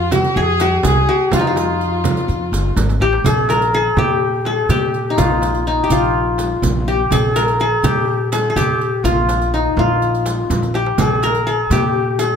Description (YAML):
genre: Arabic maqam ensemble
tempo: 124 BPM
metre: 4/4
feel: straight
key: F maqam saba, Bb maqam rast from 3.3 s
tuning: A4 = 439 Hz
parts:
  - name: qanun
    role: melody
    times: 0.0-12.4 s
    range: Eb4 to Bb4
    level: -17 LUFS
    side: left 2 dB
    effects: none
  - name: breathy ney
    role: second line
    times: 0.0-12.4 s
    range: Eb4 to Bb4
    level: -24 LUFS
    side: left 6 dB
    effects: none
  - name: rich chamber violin section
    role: second line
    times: 0.0-2.7 s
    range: F4 to Ab4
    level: -26 LUFS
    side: right 4 dB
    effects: none
  - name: upright bass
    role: bass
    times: 0.0-12.3 s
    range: Gb1+50c to Bb2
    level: -20 LUFS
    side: equal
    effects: none
  - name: darbuka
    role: percussion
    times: 0.1-12.3 s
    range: none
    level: -25 LUFS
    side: right 4 dB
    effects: none
  - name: frame drum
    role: percussion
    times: 0.1-12.3 s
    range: none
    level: -24 LUFS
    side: right 4 dB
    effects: none
  - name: riq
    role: percussion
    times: 0.1-12.3 s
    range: none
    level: -30 LUFS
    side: right 8 dB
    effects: none
room: light reverb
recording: close, detailed microphones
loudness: -14 LUFS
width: side -7 dB against mid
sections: 0.0-3.3 A section; 3.3-12.4 B section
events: drum fill 2.8-3.3, 10.5-11.0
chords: none